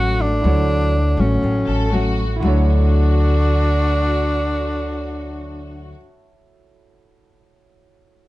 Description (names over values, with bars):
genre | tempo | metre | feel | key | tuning
bossa nova | 121 BPM | 4/4 | straight | D major | A4 = 440 Hz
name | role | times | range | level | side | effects
breathy tenor saxophone | melody | 0.0-6.0 s | C#4 to F#4 | -22 LUFS | equal | none
nylon-string guitar | accompaniment | 0.0-6.0 s | A2 to C#4 | -24 LUFS | left 2 dB | none
warm concert grand piano | accompaniment | 0.0-8.3 s | E4 to C#5 | -32 LUFS | right 7 dB | none
upright bass | bass | 0.0-5.9 s | A1 to D2 | -18 LUFS | equal | none
warm symphonic violin section | second line | 1.7-5.9 s | F#4 to A4 | -29 LUFS | left 3 dB | none
room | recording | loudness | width
light reverb | dark, warm production, nothing above 11.0 kHz | -15 LUFS | side -17 dB against mid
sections
0.0-2.4 A section; 2.4-6.4 B section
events
none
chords
0.0 Dmaj7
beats
| 0.43 0.93 1.43 1.92 | 2.42 2.91 3.41 3.90 | 4.40 4.89 5.39 5.88